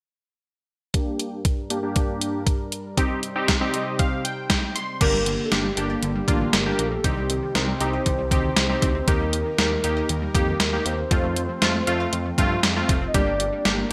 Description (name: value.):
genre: synth-pop.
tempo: 118 BPM.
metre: 4/4.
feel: straight.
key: G minor.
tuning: A4 = 440 Hz.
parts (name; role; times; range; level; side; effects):
warm analog keys; accompaniment; 0.9-13.8 s; A3 to C6; -29 LUFS; equal; chorus, low-pass filter.
phased analog pad; sustained chords; 0.9-13.9 s; G2 to C5; -34 LUFS; equal; phaser, chorus, low-pass filter.
detuned 8-bit digital drum machine; drums; 0.9-13.8 s; crash cymbal, hi-hat, kick drum, snare drum; -25 LUFS; equal; gated reverb.
soft octave-layered synth lead; melody; 5.0-13.9 s; G4 to Eb5; -31 LUFS; equal; chorus, phaser.
unison pluck; arpeggios; 5.0-13.9 s; D3 to F5; -35 LUFS; equal; none.
smooth gliding synth bass; bass; 5.0-13.8 s; F1 to G2; -30 LUFS; equal; none.
room: moderate plate reverb, RT60 1.7 s, digital ambience.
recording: bright 1980s-style digital production.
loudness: -23 LUFS.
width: mono.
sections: 0.9-5.0 A section; 5.0-13.9 B section.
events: filter sweep 0.9-5.0; synth keys fill 3.5-5.0.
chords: 0.9 Gm; 3.0 Cm; 5.0 Gm; 7.0 Cm; 9.1 Eb; 11.1 F; 13.1 Gm.